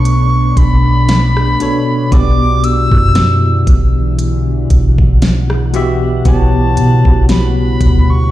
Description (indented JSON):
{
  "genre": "contemporary R&B",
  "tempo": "58 BPM",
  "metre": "4/4",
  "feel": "swing 54% on 16ths",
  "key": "unclear",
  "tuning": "A4 = 440 Hz",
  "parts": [
    { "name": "concert flute", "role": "melody", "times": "0.0-8.3 s", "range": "A5 to E6", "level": "-18 LUFS", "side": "left 1 dB", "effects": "digital delay" },
    { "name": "bell-like tine electric piano", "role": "accompaniment", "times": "0.0-8.3 s", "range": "B2 to E5", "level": "-16 LUFS", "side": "equal", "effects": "medium stereo tremolo" },
    { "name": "glassy FM pad", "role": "sustained chords", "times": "0.0-8.3 s", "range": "B2 to F#5", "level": "-18 LUFS", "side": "equal", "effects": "ensemble chorus, built-in reverb, sidechain pumping" },
    { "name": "soft 808-style bass", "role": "bass", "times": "0.0-8.3 s", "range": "B1 to B2", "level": "-13 LUFS", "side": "equal", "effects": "none" },
    { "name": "smooth R&B drum kit", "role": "drums", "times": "0.1-8.1 s", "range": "hi-hat, kick drum, rim click, snare drum", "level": "-13 LUFS", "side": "equal", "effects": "none" }
  ],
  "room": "little or no reverb",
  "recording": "played on a big sound system in a bare room, stone room reverb",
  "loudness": "-9 LUFS",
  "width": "side -14 dB against mid",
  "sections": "0.0-8.3 A section",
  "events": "none",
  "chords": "0.0 Bm7; 2.1 Em7/B; 6.3 A13/B",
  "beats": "0.05 1.08 | 2.12 3.15 4.19 5.22 | 6.26 7.29"
}